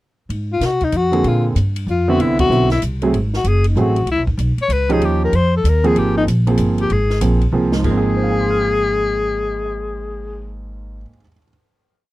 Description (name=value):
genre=jazz, small-group swing and bop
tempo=191 BPM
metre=3/4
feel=swing 63% on 8ths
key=Ab major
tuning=A4 = 440 Hz
part: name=upright bass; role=bass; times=0.3-11.0 s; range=Gb1 to C3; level=-19 LUFS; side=equal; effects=none
part: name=compact cocktail drum kit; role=drums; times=0.3-9.7 s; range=crash cymbal, cymbal swell, hi-hat, kick drum, ride cymbal, snare drum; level=-27 LUFS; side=equal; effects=none
part: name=breathy alto saxophone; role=melody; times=0.5-10.5 s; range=Eb4 to Db5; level=-19 LUFS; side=left 3 dB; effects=none
part: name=warm baby grand piano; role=accompaniment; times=1.1-11.5 s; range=Ab2 to C7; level=-19 LUFS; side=right 3 dB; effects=none
room=little or no reverb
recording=dry, close 1970s-style studio recording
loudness=-14 LUFS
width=side -17 dB against mid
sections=0.3-7.8 A section; 7.8-9.7 final chord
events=band accent 2.3; drum fill 7.5-7.8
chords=0.3 Ab69; 1.2 Bb9; 2.2 Cmaj9; 3.1 Ab7b9; 4.1 Dbsus2; 5.0 Eb9; 6.0 Ab69